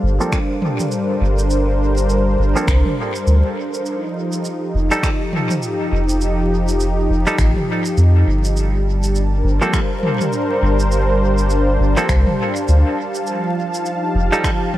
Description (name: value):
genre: ambient dub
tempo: 102 BPM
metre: 4/4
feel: swing 60% on 16ths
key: G minor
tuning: A4 = 440 Hz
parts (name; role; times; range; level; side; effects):
- warm analog pad; sustained chords; 0.0-14.8 s; F3 to A5; -20 LUFS; equal; chorus
- soft dub sub bass; bass; 0.0-14.3 s; F1 to F2; -16 LUFS; equal; none
- semi-hollow electric guitar; stabs; 0.2-14.5 s; F3 to A4; -24 LUFS; right 1 dB; low-pass filter, dub echo
- organic electronic drum kit; drums; 0.2-14.8 s; finger snaps, shaker, toms; -27 LUFS; equal; dub echo
- electronic kick drum; drums; 0.3-14.6 s; none; -21 LUFS; equal; none
room: light reverb, digital ambience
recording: vinyl crackle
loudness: -15 LUFS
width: side -14 dB against mid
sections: 0.0-14.8 A section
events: filter sweep on clean electric guitar 0.0-14.8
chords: 0.0 Gm11; 3.9 F9; 8.6 Gm11; 13.3 F9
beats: 0.33 0.92 | 1.50 2.09 2.68 3.27 | 3.86 4.45 5.03 5.62 | 6.21 6.80 7.39 7.97 | 8.56 9.15 9.74 10.33 | 10.92 11.50 12.09 12.68 | 13.27 13.86 14.45